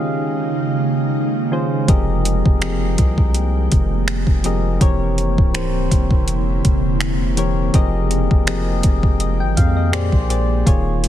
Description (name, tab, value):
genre	contemporary R&B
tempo	82 BPM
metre	4/4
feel	swing 54% on 16ths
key	F minor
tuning	A4 = 437 Hz
part	soft electric-piano-like synth keys	accompaniment	0.0-11.1 s	Bb2 to G5	-22 LUFS	left 2 dB	chorus
part	ethereal airy pad	sustained chords	0.0-11.1 s	Db3 to G5	-24 LUFS	right 2 dB	ensemble chorus, built-in reverb
part	long sustained 808-style bass	bass	1.9-11.1 s	Db1 to F2	-20 LUFS	equal	none
part	smooth R&B drum kit	drums	1.9-11.1 s	finger snaps, hi-hat, kick drum	-16 LUFS	equal	soft clipping on snare
room	little or no reverb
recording	dense, heavily limited modern master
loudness	-15 LUFS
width	side -11 dB against mid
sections	0.0-11.1 A section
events	none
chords	0.0 Eb7sus4; 1.9 Fm11; 4.8 C7b9; 7.7 Fm11; 9.9 Bb13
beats	0.42 1.15 | 1.89 2.62 3.35 4.08 | 4.81 5.54 6.28 7.01 | 7.74 8.47 9.20 9.93 | 10.66